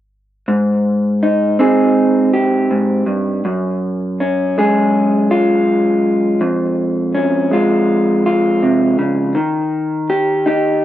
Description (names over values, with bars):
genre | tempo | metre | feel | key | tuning
folk | 81 BPM | 4/4 | straight | Ab major | A4 = 440 Hz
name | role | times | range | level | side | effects
electric guitar through a small old amp | accompaniment | 0.5-10.8 s | F2 to Ab4 | -13 LUFS | equal | none
room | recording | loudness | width
light reverb | recorded outdoors, with no room sound, faint mains hum | -13 LUFS | side -13 dB against mid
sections
0.5-10.8 A section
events
none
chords
0.5 Ab; 3.4 Gbsus2; 6.4 Db/F; 9.4 Eb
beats
| 0.48 1.23 1.97 2.71 | 3.45 4.19 4.92 5.66 | 6.40 7.14 7.88 8.62 | 9.36 10.10 10.84